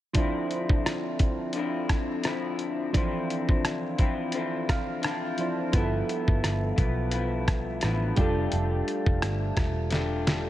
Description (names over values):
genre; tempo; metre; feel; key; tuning
indie pop, bedroom pop; 86 BPM; 4/4; swing 55% on 16ths; D dorian; A4 = 440 Hz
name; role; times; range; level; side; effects
electric guitar through a small old amp; accompaniment; 0.1-10.5 s; G2 to G4; -31 LUFS; left 4 dB; lush chorus, warbly pitch drift
soft electric-piano-like synth keys; accompaniment; 0.1-10.5 s; E3 to A5; -32 LUFS; right 3 dB; chorus, cassette tape
dusty soul sampler-style drum kit; drums; 0.1-10.4 s; hi-hat, kick drum, rim click, snare drum; -27 LUFS; equal; none
vintage muted picked electric bass; bass; 5.7-10.5 s; E1 to B1; -29 LUFS; equal; none
room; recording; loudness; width
digital ambience; none; -25 LUFS; side -14 dB against mid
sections
0.1-10.5 A section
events
synth keys fill 4.3-5.7, 10.3; drum fill 9.9-10.5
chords
0.1 Dm9; 5.7 G13; 8.2 F69